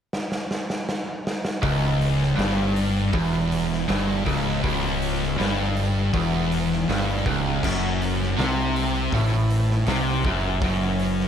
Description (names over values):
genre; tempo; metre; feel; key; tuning
stoner and doom metal; 80 BPM; 4/4; straight; unclear; A4 = 440 Hz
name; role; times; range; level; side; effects
raw garage drum kit; drums; 0.1-11.3 s; crash cymbal, hi-hat, kick drum, snare drum; -29 LUFS; equal; none
overdriven electric guitar; riff; 1.6-11.3 s; C#2 to C3; -27 LUFS; equal; none
thick fuzz guitar; riff; 1.6-11.3 s; C#2 to C3; -26 LUFS; left 6 dB; distortion
thick fuzz guitar; riff; 1.6-11.3 s; C#2 to C3; -26 LUFS; right 6 dB; distortion
growling fingered electric bass; bass; 1.6-11.3 s; C#1 to C2; -29 LUFS; equal; overdrive
room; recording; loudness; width
light reverb, studio ambience; none; -21 LUFS; side -8 dB against mid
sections
0.0-1.6 A section; 1.6-11.3 B section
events
drum fill 0.1-1.6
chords
0.0 N.C.; 1.6 C#m; 7.6 F#dim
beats
0.11 0.87 | 1.62 2.38 3.13 3.88 | 4.63 5.38 6.13 6.88 | 7.63 8.38 9.13 9.88 | 10.63